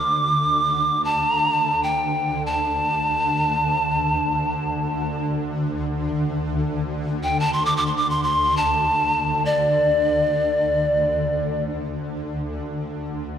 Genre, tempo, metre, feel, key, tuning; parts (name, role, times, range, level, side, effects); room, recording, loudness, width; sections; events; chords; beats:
world meditative, free-time meditation music; free time; A4 = 445 Hz
breathy bright pan flute; melody; 0.0-11.7 s; D5 to D6; -20 LUFS; equal
shimmering ambient pad; drone; 0.0-13.4 s; D2 to D3; -25 LUFS; equal; chorus, built-in reverb
wet lush hall reverb, RT60 2.1 s; cassette tape; -19 LUFS; side -8 dB against mid
0.0-13.4 A section
free time